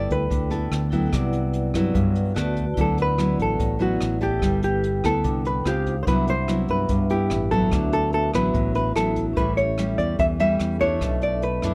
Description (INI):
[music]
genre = bossa nova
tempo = 146 BPM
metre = 4/4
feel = straight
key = D major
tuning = A4 = 440 Hz
[part]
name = hollow-body jazz guitar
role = melody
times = 0.0-11.7 s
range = F#4 to E5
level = -27 LUFS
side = equal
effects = plate reverb
[part]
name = nylon-string guitar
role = accompaniment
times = 0.0-11.7 s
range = G2 to A4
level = -28 LUFS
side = equal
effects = none
[part]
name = vibraphone with medium hard mallets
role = accompaniment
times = 0.0-11.7 s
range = C#4 to B5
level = -34 LUFS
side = equal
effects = none
[part]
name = fingered electric bass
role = bass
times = 0.0-11.7 s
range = G1 to G2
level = -28 LUFS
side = equal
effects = none
[part]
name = jazz brush drum kit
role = drums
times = 0.1-11.7 s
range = hi-hat, kick drum, rim click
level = -32 LUFS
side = equal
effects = none
[sound]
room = light reverb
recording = none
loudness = -22 LUFS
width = mono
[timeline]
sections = 0.0-2.8 A section; 2.8-11.7 B section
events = hollow-body jazz guitar solo 0.0-2.8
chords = 0.0 G69; 1.1 Cmaj9#11; 2.4 D6; 2.8 D69; 4.4 G69; 5.7 C#maj9#11; 6.1 Cmaj9#11; 7.7 D69; 9.4 A7; 11.0 Bm11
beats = 0.30 0.72 | 1.13 1.54 1.95 2.36 | 2.77 3.19 3.60 4.01 | 4.42 4.84 5.25 5.66 | 6.07 6.48 6.90 7.31 | 7.72 8.13 8.54 8.96 | 9.37 9.78 10.19 10.60 | 11.01 11.43